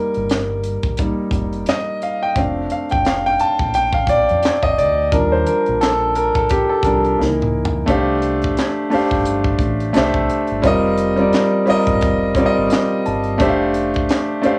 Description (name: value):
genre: R&B, neo-soul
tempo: 87 BPM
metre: 4/4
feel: swing 57% on 16ths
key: unclear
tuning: A4 = 440 Hz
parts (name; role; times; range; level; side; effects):
- clear concert grand piano; accompaniment; 0.0-14.6 s; Fb3 to A5; -19 LUFS; equal; cassette tape
- tight funk drum kit; drums; 0.1-14.6 s; handclaps, hi-hat, kick drum, snare drum, toms; -24 LUFS; equal; cassette tape
- deep dub fingered electric bass; bass; 0.2-14.5 s; F1 to F2; -26 LUFS; equal; none
room: light reverb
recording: home recording on cassette, small room ambience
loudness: -17 LUFS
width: mono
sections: 0.0-7.9 A section; 7.9-14.6 B section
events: grand piano solo 0.0-7.9; drum fill 7.2-7.9; grand piano fill 12.4-13.4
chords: 0.0 F9sus4; 2.4 Bbmaj9/F; 5.1 Ebmaj7; 7.2 Dbm69; 7.9 Csus2; 10.0 Cadd9; 10.6 F9sus4; 13.4 F69